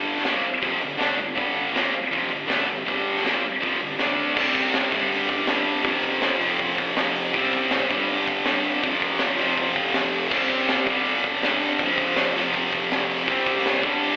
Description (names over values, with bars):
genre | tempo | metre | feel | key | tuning
garage rock duo or trio | 162 BPM | 4/4 | straight | unclear | A4 = 440 Hz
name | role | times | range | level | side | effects
thick fuzz guitar | riff | 0.0-14.2 s | F2 to D4 | -24 LUFS | equal | distortion
raw garage drum kit | drums | 0.2-14.1 s | crash cymbal, hi-hat, kick drum, snare drum | -28 LUFS | equal | none
room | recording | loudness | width
light reverb, studio reverb | live gig heard through the venue's PA, recital hall reverb, telephone sound | -23 LUFS | mono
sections
0.0-4.4 A section; 4.4-14.2 B section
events
none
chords
0.0 G5; 4.0 D5; 4.4 C5; 4.9 G5; 5.9 F5; 7.3 C5; 7.9 G5; 8.8 F5; 10.3 C5; 10.9 G5; 11.8 F5; 13.3 C5